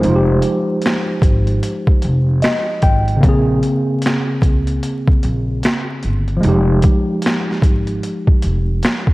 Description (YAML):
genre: lo-fi hip hop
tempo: 75 BPM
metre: 4/4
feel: swing 62% on 16ths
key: F minor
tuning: A4 = 440 Hz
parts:
  - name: tine electric piano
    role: accompaniment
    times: 0.0-9.1 s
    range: Db3 to G5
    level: -18 LUFS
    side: equal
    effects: medium stereo tremolo, cassette tape
  - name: upright bass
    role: bass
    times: 0.0-8.8 s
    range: F1 to Db2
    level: -17 LUFS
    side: equal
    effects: tube saturation
  - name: boom bap sampler-style drum kit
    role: drums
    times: 0.0-9.1 s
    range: finger snaps, hi-hat, kick drum, snare drum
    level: -15 LUFS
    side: equal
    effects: overdrive
room: light reverb, digital ambience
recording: worn, warbling old tape, cassette tape, vinyl crackle, warbly pitch drift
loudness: -13 LUFS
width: side -20 dB against mid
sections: 0.0-9.1 A section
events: tine electric piano fill 2.0-3.2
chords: 0.0 Fm9; 3.2 Bbm9; 6.4 Fm9